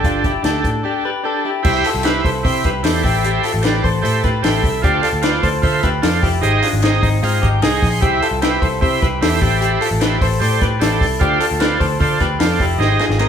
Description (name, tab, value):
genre	jangly indie pop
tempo	151 BPM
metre	4/4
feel	straight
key	C major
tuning	A4 = 440 Hz
part	combo organ	accompaniment	0.0-13.3 s	D4 to C6	-19 LUFS	right 4 dB	none
part	direct-recorded clean electric guitar	arpeggios	0.0-13.3 s	C4 to C5	-21 LUFS	left 5 dB	spring reverb
part	vintage muted picked electric bass	bass	0.0-13.3 s	F1 to D3	-20 LUFS	equal	none
part	compact cocktail drum kit	drums	0.0-13.3 s	crash cymbal, hi-hat, kick drum, snare drum, toms	-19 LUFS	equal	none
part	group handclap	percussion	1.9-13.3 s	none	-32 LUFS	left 5 dB	none
room	wet large studio reverb, RT60 1.2 s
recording	band playing live in one room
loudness	-14 LUFS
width	side -8 dB against mid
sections	0.0-1.6 A section; 1.6-13.3 B section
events	break 0.8-1.6; transistor combo organ fill 4.0-4.8, 7.2-8.0; drum fill 12.8-13.3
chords	0.0 Gsus2; 1.6 C; 3.0 Am7; 4.8 Dm7; 6.4 Ab; 8.0 C; 9.4 Am7; 11.2 Dm7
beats	| 0.05 0.45 0.85 1.25 | 1.65 2.05 2.45 2.85 | 3.25 3.65 4.04 4.44 | 4.84 5.24 5.64 6.04 | 6.43 6.83 7.23 7.63 | 8.03 8.43 8.82 9.22 | 9.62 10.02 10.41 10.81 | 11.21 11.61 12.01 12.40 | 12.80 13.20